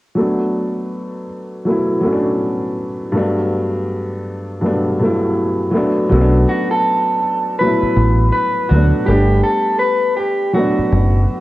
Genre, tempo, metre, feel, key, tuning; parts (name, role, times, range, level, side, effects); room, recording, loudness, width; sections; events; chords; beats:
hip hop; 81 BPM; 4/4; swing 62% on 16ths; A4 = 444 Hz
dark upright piano; accompaniment; 0.2-11.4 s; G2 to E4; -17 LUFS; equal; cassette tape, low-pass filter
deep dub fingered electric bass; bass; 6.1-11.3 s; F#1 to D2; -13 LUFS; equal
electric guitar through a small old amp; melody; 6.5-11.4 s; F#4 to B4; -17 LUFS; equal; low-pass filter, cassette tape, tape echo
moderate spring reverb, RT60 1.8 s, small room ambience; home recording on cassette; -14 LUFS; side -16 dB against mid
0.2-6.1 A section; 6.1-11.4 B section
0.2 Bm7; 3.1 Gmaj9; 5.7 Bm7; 9.1 Gmaj9
| 0.17 0.92 1.66 2.40 | 3.14 3.88 4.62 5.36 | 6.10 6.84 7.58 8.32 | 9.06 9.80 10.55 11.29